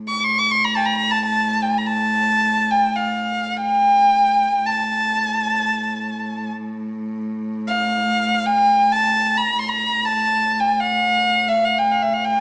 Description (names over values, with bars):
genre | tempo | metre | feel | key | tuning
arabic | free time | none | none | A maqam huzam | A4 = 437 Hz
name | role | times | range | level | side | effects
warm cello | drone | 0.0-12.4 s | A2 | -29 LUFS | equal | none
dark violin | melody | 0.1-12.4 s | E5+36c to D6-25c | -19 LUFS | equal | none
room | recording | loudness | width
wet recital hall reverb, RT60 1.6 s | small speaker sound | -19 LUFS | mono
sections
0.0-12.4 A section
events
none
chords
none